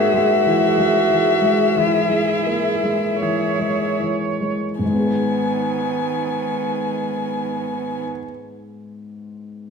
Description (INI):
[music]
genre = classical, slow romantic movement for piano quartet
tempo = 36-49 BPM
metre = 4/4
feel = rubato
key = G# minor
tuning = A4 = 445 Hz
[part]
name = dark violin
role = melody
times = 0.0-8.0 s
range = E5 to G#5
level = -22 LUFS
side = left 6 dB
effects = none
[part]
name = rich cello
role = second line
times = 0.0-8.1 s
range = D#3 to G#4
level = -25 LUFS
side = right 10 dB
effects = none
[part]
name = clear grand piano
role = accompaniment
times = 0.0-9.7 s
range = G#2 to B4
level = -23 LUFS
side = left 2 dB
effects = none
[part]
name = dark viola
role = accompaniment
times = 0.0-8.0 s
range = B3 to C#5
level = -25 LUFS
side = right 5 dB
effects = none
[sound]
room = wet recital hall reverb, RT60 1.5 s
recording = none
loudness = -17 LUFS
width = side -6 dB against mid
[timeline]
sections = 0.0-4.8 A section; 4.8-9.7 B section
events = slowing down 0.0-4.8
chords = 0.0 C#m/G#; 4.8 G#m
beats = 0.48 1.79 3.23 | 4.81 6.30 7.80 9.31